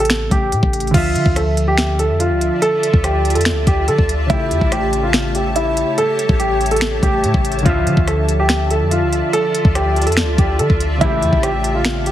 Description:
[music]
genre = hip hop, trap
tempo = 143 BPM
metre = 4/4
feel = half-time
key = D harmonic minor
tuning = A4 = 439 Hz
[part]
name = dark baby grand piano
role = melody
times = 0.0-12.1 s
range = E4 to A4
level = -18 LUFS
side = equal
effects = tape echo
[part]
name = warbly lo-fi synth keys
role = accompaniment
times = 0.0-12.1 s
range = C#3 to E5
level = -23 LUFS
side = right 1 dB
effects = chorus
[part]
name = clean 808-style bass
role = bass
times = 0.0-12.1 s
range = A1 to D3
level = -19 LUFS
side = equal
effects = none
[part]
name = trap drum kit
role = drums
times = 0.0-12.1 s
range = crash cymbal, finger snaps, hi-hat, kick drum, rim click, snare drum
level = -18 LUFS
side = equal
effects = overdrive
[part]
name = granular cloud pad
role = sustained chords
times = 2.1-12.1 s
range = F4 to A5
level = -24 LUFS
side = left 1 dB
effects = built-in reverb
[part]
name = chorused polysynth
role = stabs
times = 7.7-8.0, 11.0-11.3 s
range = C#2 to F3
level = -24 LUFS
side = right 1 dB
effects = none
[sound]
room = light reverb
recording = heavily compressed radio sound, multiband compression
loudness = -14 LUFS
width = side -12 dB against mid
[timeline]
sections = 0.9-12.1 A section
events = none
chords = 0.0 A7; 0.9 Dmadd9; 4.3 A7; 7.7 Dmadd9; 11.0 A7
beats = 0.10 0.52 | 0.94 1.36 1.78 2.20 | 2.62 3.04 3.46 3.88 | 4.30 4.72 5.14 5.56 | 5.98 6.40 6.82 7.24 | 7.66 8.07 8.49 8.91 | 9.33 9.75 10.17 10.59 | 11.01 11.43 11.85

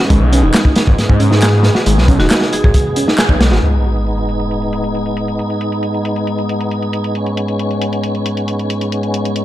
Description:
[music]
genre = breakbeat, breaks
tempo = 136 BPM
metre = 4/4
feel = straight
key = G# minor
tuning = A4 = 440 Hz
[part]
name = marimba with hard mallets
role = melody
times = 0.0-2.7 s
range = F#4 to G#4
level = -23 LUFS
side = right 1 dB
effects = old record sound, vintage 12-bit sampler grit, ping-pong delay
[part]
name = tonewheel organ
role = sustained chords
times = 0.0-9.4 s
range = G#2 to G#4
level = -18 LUFS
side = equal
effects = chorus vibrato, slow rotary speaker, sidechain pumping
[part]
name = reed electric piano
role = riff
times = 0.0-3.6 s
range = G#3 to G#4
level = -19 LUFS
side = right 1 dB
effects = vintage 12-bit sampler grit, low-pass filter, ping-pong delay
[part]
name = phased detuned saw bass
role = bass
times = 0.1-3.6 s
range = D#1 to G#2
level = -12 LUFS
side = equal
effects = phaser, tube saturation
[part]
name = crunchy breakbeat drum kit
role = drums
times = 0.1-3.6 s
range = hi-hat, kick drum, snare drum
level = -13 LUFS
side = equal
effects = none
[part]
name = house drum kit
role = drums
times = 0.5-9.4 s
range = handclaps, hi-hat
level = -25 LUFS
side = left 1 dB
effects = low-pass filter on snare, low-pass filter on hats
[part]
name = sub drop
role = sound effects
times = 3.6-5.4 s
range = none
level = -19 LUFS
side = equal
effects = none
[sound]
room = light reverb, small room ambience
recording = dark, warm production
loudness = -12 LUFS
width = side -14 dB against mid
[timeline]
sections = 0.0-3.6 A section; 3.6-9.4 B section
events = band accent 3.2; impact 3.6-5.4; filter sweep on drum 3.6-9.4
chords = 0.0 G#m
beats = | 0.10 0.54 0.98 1.42 | 1.86 2.30 2.75 3.19 | 3.63 4.07 4.51 4.95 | 5.39 5.83 6.27 6.71 | 7.16 7.60 8.04 8.48 | 8.92 9.36

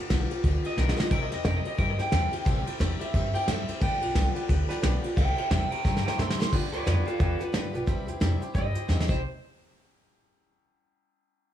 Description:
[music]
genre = rockabilly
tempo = 178 BPM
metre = 4/4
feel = swing 61% on 8ths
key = C major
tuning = A4 = 440 Hz
[part]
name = picked steel-string acoustic guitar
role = accompaniment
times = 0.0-9.2 s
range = G2 to G4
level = -34 LUFS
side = left 3 dB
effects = plate reverb
[part]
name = upright bass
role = bass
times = 0.1-9.2 s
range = G1 to A2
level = -28 LUFS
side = equal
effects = none
[part]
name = soft brush drum kit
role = drums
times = 0.1-9.2 s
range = crash cymbal, hi-hat, kick drum, ride cymbal, snare drum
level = -28 LUFS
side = equal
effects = none
[part]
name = electric guitar through a small old amp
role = melody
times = 0.7-9.2 s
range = F4 to C6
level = -32 LUFS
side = right 1 dB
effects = plate reverb, tape echo
[part]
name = clear upright piano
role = accompaniment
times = 1.1-9.2 s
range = B4 to G5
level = -40 LUFS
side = right 6 dB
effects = plate reverb
[sound]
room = light reverb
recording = small room ambience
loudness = -24 LUFS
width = side -11 dB against mid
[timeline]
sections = 0.0-6.5 A section; 6.5-9.2 B section; 9.2-10.6 C section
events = drum fill 0.8-1.1, 5.8-6.5, 8.9-9.2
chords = 0.0 G7; 1.1 C; 3.8 G7; 5.2 C; 6.5 G7; 7.9 C; 9.2 N.C.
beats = 0.10 0.44 0.77 | 1.11 1.45 1.79 2.12 | 2.46 2.80 3.14 3.48 | 3.82 4.15 4.49 4.83 | 5.17 5.51 5.84 6.18 | 6.52 6.86 7.20 7.53 | 7.87 8.21 8.55 8.88

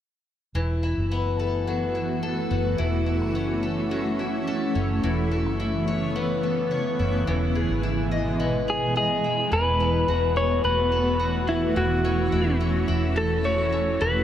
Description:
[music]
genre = dream pop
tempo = 107 BPM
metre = 4/4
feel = straight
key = unclear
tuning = A4 = 440 Hz
[part]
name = granular cloud pad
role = sustained chords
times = 1.0-14.2 s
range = B2 to F#4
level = -27 LUFS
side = right 1 dB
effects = built-in reverb
[part]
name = vintage muted fingered electric bass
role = bass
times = 0.5-14.2 s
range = E1 to G#1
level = -27 LUFS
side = equal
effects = none
[part]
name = picked twelve-string acoustic guitar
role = arpeggios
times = 0.6-14.2 s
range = E3 to D#5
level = -28 LUFS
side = left 3 dB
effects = wide subtle chorus, tape echo
[part]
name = electric slide guitar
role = melody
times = 8.7-14.2 s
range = E4 to C#5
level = -24 LUFS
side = equal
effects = tape echo
[sound]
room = moderate huge ambient reverb, RT60 7.3 s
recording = none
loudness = -22 LUFS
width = side -10 dB against mid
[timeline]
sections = 0.5-9.5 A section; 9.5-14.2 B section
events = none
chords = 0.5 B7sus4/E; 2.8 F#m7/E; 5.0 Aadd9/E; 7.3 Emaj7; 9.5 B7sus4/E; 11.8 F#m7/E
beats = | 0.55 1.11 1.67 2.23 | 2.79 3.35 3.91 4.47 | 5.03 5.59 6.15 6.71 | 7.28 7.84 8.40 8.96 | 9.52 10.08 10.64 11.20 | 11.76 12.32 12.88 13.44 | 14.00

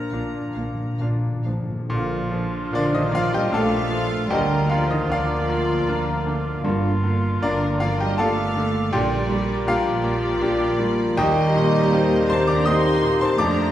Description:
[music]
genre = classical, romantic movement for piano and orchestra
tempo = 65-82 BPM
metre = 3/4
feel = rubato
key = Bb major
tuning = A4 = 440 Hz
[part]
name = bright baby grand piano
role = melody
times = 0.0-13.7 s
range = D2 to Eb6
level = -24 LUFS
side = left 1 dB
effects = none
[part]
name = dark chamber violin section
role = second line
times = 0.0-13.7 s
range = Bb4 to C6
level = -32 LUFS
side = left 2 dB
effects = none
[part]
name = mellow clarinet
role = second line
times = 0.0-13.7 s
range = D4 to Eb5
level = -29 LUFS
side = left 1 dB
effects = none
[part]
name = warm French horn section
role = sustained chords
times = 0.0-13.7 s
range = Bb3 to G4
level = -28 LUFS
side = left 2 dB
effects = none
[part]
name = timpani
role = percussion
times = 0.0-1.9 s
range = Bb2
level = -28 LUFS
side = equal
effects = none
[part]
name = warm studio violin section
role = melody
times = 0.1-13.7 s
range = Bb4 to C6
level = -35 LUFS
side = left 3 dB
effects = none
[part]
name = dark studio viola section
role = accompaniment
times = 0.1-13.7 s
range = A3 to G4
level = -31 LUFS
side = right 1 dB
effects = none
[part]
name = dark studio double bass section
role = bass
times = 0.1-13.7 s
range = G1 to F2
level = -26 LUFS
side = right 2 dB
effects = none
[part]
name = warm symphonic cello section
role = bass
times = 0.1-13.7 s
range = Bb2 to Eb4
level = -28 LUFS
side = right 2 dB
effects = none
[part]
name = clear oboe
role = second line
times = 1.9-13.7 s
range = F4 to C5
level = -34 LUFS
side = right 1 dB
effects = none
[part]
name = mellow bassoon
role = accompaniment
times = 1.9-13.7 s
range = F3 to Bb3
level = -31 LUFS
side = right 1 dB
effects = none
[part]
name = dark trombone section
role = sustained chords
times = 1.9-13.7 s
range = D3 to Bb3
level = -32 LUFS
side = right 2 dB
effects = none
[part]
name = mellow concert flute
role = second line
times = 2.7-13.7 s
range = A5 to F6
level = -33 LUFS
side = left 1 dB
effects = none
[sound]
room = wet recital hall reverb, RT60 1.6 s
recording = heard from further back in the room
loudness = -19 LUFS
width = side -12 dB against mid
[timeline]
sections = 0.0-1.9 A section; 1.9-13.7 B section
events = timpani fill 0.0-1.9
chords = 0.0 Bb; 4.3 Bb/D; 6.6 Gm7; 8.9 Gm/Bb; 11.2 Cm7/Eb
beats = 0.12 1.00 | 1.90 2.73 3.52 | 4.30 5.09 5.87 | 6.64 7.42 8.19 | 8.92 9.67 10.41 | 11.17 11.92 12.66 | 13.39

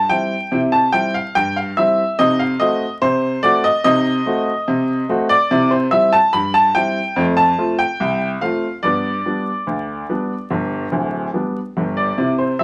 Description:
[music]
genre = ragtime piano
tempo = 72 BPM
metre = 2/4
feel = straight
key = unclear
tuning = A4 = 440 Hz
[part]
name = warm upright piano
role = solo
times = 0.0-12.6 s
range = D1 to B5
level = -18 LUFS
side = equal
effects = none
[sound]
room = moderate studio reverb, RT60 0.9 s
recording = vinyl crackle, faint mains hum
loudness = -18 LUFS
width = mono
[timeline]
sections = 0.0-12.6 A section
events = none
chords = 0.0 C; 2.2 Cdim7; 5.5 C; 7.2 F; 8.8 G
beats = | 0.52 1.35 | 2.19 3.02 | 3.85 4.67 | 5.50 6.33 | 7.16 7.99 | 8.83 9.67 | 10.51 11.34 | 12.18

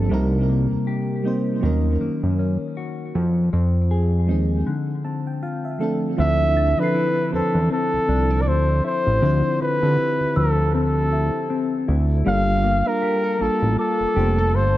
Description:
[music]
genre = R&B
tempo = 79 BPM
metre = 4/4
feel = swing 58% on 16ths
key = unclear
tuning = A4 = 440 Hz
[part]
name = mellow FM electric piano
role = accompaniment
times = 0.0-14.8 s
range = F3 to A5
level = -25 LUFS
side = right 2 dB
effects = chorus, tape echo
[part]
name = mellow electric guitar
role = arpeggios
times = 0.0-14.8 s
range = C3 to A4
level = -26 LUFS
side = left 4 dB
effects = phaser, tape echo
[part]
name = fat analog bass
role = bass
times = 0.0-14.8 s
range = F1 to D3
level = -20 LUFS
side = equal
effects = none
[part]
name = breathy flugelhorn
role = melody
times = 6.2-14.8 s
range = A4 to F5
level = -22 LUFS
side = equal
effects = tape echo
[part]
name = small celesta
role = texture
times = 6.6-14.8 s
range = D6 to C7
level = -36 LUFS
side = right 2 dB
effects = tape echo
[sound]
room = light reverb, studio reverb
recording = echo-heavy mix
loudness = -18 LUFS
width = side -14 dB against mid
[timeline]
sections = 0.0-6.2 A section; 6.2-14.8 B section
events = break 4.7-6.2; FM electric piano fill 4.7-6.2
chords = 0.1 Cm7; 1.6 Ebm7; 3.1 Fm7; 4.7 Dm7; 6.2 Dm9; 12.3 Gm9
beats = | 0.11 0.87 1.63 2.39 | 3.15 3.91 4.67 5.43 | 6.19 6.95 7.71 8.46 | 9.22 9.98 10.74 11.50 | 12.26 13.02 13.78 14.54

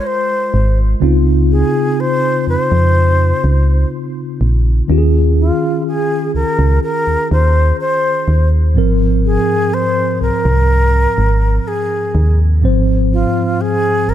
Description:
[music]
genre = contemporary R&B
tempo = 62 BPM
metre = 4/4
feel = straight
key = Ab major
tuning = A4 = 438 Hz
[part]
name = breathy mellow concert flute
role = melody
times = 0.0-14.1 s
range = F4 to C5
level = -17 LUFS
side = left 1 dB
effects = ping-pong delay
[part]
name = mellow tine electric piano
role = accompaniment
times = 0.0-14.1 s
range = Ab2 to Eb5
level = -18 LUFS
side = equal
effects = medium stereo tremolo
[part]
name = solid FM bass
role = bass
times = 0.5-14.1 s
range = G1 to F2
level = -12 LUFS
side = equal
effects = none
[sound]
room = studio ambience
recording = none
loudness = -12 LUFS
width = side -11 dB against mid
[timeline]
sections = 0.0-14.1 A section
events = none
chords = 0.0 Ab69; 1.0 Dbmaj9; 4.9 Eb9sus4; 8.8 Ab69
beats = 0.05 | 1.02 1.99 2.95 3.92 | 4.89 5.86 6.82 7.79 | 8.76 9.73 10.70 11.66 | 12.63 13.60

